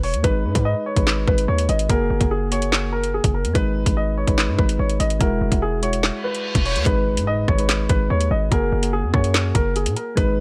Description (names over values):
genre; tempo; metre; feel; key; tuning
hip hop, drill; 145 BPM; 4/4; half-time; G# minor; A4 = 441 Hz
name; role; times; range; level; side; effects
dark grand piano; melody; 0.0-10.4 s; G#4 to D#5; -27 LUFS; equal; none
hard-hitting 808-style bass; bass; 0.0-10.4 s; E1 to A#2; -24 LUFS; equal; none
drill drum kit; drums; 0.0-10.3 s; handclaps, hi-hat, kick drum, rim click, snare drum; -23 LUFS; equal; vintage 12-bit sampler grit
soft electric-piano-like synth keys; accompaniment; 0.2-10.4 s; G#3 to B4; -28 LUFS; equal; chorus
reverse cymbal and impact; sound effects; 6.2-8.5 s; none; -32 LUFS; equal; none
room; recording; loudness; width
little or no reverb; none; -20 LUFS; mono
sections
0.0-6.9 A section; 6.9-10.4 B section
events
reverse cymbal 6.2-6.9; impact 6.9-8.5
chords
0.2 G#m; 1.9 F#add9; 3.6 G#m; 5.2 Eadd9; 6.9 G#m; 8.5 F#add9